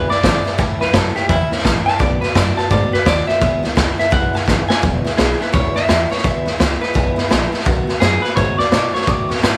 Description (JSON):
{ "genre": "rockabilly", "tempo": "170 BPM", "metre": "4/4", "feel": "swing 63% on 8ths", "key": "E major", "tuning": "A4 = 440 Hz", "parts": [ { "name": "clean electric guitar", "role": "melody", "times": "0.0-9.6 s", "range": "E4 to A5", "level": "-22 LUFS", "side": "equal", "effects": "tape echo" }, { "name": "picked steel-string acoustic guitar", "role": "accompaniment", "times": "0.0-9.6 s", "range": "E2 to F#4", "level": "-26 LUFS", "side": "equal", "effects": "none" }, { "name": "upright bass", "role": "bass", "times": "0.0-9.6 s", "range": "E1 to B2", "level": "-23 LUFS", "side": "equal", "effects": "none" }, { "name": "raw garage drum kit", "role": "drums", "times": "0.1-9.5 s", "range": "hi-hat, kick drum, snare drum", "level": "-19 LUFS", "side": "equal", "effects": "none" } ], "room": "light reverb, small room ambience", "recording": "none", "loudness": "-16 LUFS", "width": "mono", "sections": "0.0-4.8 A section; 4.8-9.6 B section", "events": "clean electric guitar solo 0.0-4.8; drum fill 4.5-4.8", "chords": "0.0 E; 0.6 A; 2.0 B7; 3.4 E; 7.7 B7" }